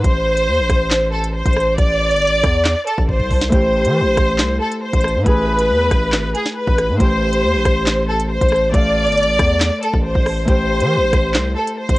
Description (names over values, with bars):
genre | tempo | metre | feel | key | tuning
hip hop, drill | 138 BPM | 4/4 | half-time | A minor | A4 = 440 Hz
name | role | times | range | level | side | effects
warm symphonic violin section | melody | 0.0-12.0 s | G#4 to D5 | -17 LUFS | equal | none
distorted 808-style bass | bass | 0.0-12.0 s | G1 to E3 | -20 LUFS | equal | distortion
drill drum kit | drums | 0.0-12.0 s | handclaps, hi-hat, kick drum, rim click, snare drum | -18 LUFS | equal | vintage 12-bit sampler grit, cassette tape
Celtic harp | accompaniment | 3.5-12.0 s | A3 to F5 | -22 LUFS | left 1 dB | cassette tape
room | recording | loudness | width
light reverb | home recording on cassette | -14 LUFS | side -19 dB against mid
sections
0.0-12.0 A section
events
drum fill 3.1-3.5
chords
0.0 Am; 1.8 D5; 3.5 Am7; 5.3 E/A; 7.0 Am7; 8.7 Dm; 10.5 Am7